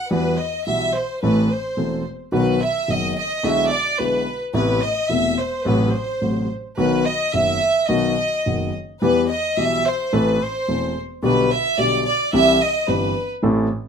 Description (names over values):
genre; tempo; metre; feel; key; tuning
tango; 108 BPM; 4/4; rubato; E harmonic minor; A4 = 440 Hz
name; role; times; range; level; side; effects
warm chamber violin section; second line; 0.0-13.3 s; B4 to F#5; -20 LUFS; right 1 dB; none
warm concert grand piano; accompaniment; 0.1-13.7 s; E1 to A4; -20 LUFS; left 1 dB; none
room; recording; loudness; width
moderate studio reverb, RT60 0.7 s; minimal, uncompressed stereo recording; -18 LUFS; side -7 dB against mid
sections
0.1-13.9 A section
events
violin section solo 0.1-13.9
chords
0.1 Emadd9; 1.2 Am; 2.3 B; 3.4 E7/B; 4.6 Amadd9; 5.7 F#dim/A; 6.8 B; 9.0 Em; 10.1 Am; 11.2 G/B; 12.3 C